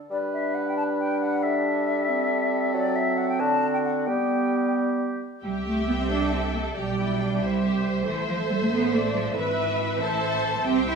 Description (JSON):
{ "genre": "quick classical-period movement for symphony orchestra", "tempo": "92 BPM (dotted quarters)", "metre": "6/8", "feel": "straight", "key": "G major, C major from 5.4 s", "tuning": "A4 = 438 Hz", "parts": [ { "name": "dark clarinet", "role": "second line", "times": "0.1-5.2 s", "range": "B3 to D4", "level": "-27 LUFS", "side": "right 6 dB", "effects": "none" }, { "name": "hollow concert flute", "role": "second line", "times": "0.1-4.8 s", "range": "D5 to A5", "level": "-28 LUFS", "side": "left 4 dB", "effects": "none" }, { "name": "mellow oboe", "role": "second line", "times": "0.1-5.2 s", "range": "F#4 to B4", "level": "-33 LUFS", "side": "right 1 dB", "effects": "none" }, { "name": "clear bassoon", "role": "accompaniment", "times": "0.1-5.2 s", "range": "D3 to G3", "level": "-27 LUFS", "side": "left 5 dB", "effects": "none" }, { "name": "rich studio violin section", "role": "melody", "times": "5.4-11.0 s", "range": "E5 to A5", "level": "-34 LUFS", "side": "left 5 dB", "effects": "none" }, { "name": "warm studio violin section", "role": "second line", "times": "5.4-11.0 s", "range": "D4 to C5", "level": "-31 LUFS", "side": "left 1 dB", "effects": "none" }, { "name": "warm studio viola section", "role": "accompaniment", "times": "5.4-11.0 s", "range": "G4 to E5", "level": "-29 LUFS", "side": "right 1 dB", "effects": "none" }, { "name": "rich studio cello section", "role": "bass", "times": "5.4-11.0 s", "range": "E3 to E4", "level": "-26 LUFS", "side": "right 4 dB", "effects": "none" }, { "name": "rich studio double bass section", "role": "bass", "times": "5.4-11.0 s", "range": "G#1 to C2", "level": "-31 LUFS", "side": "right 3 dB", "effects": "none" } ], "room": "wet recital hall reverb, RT60 1.3 s", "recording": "small room ambience", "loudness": "-22 LUFS", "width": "side -5 dB against mid", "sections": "0.0-5.4 A section; 5.4-11.0 B section", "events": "none", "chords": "0.1 G; 2.7 F#m7b5; 3.4 D7; 4.1 G; 5.4 C; 6.8 G/B; 7.4 C; 8.1 Am; 9.4 E/G#; 10.0 Am" }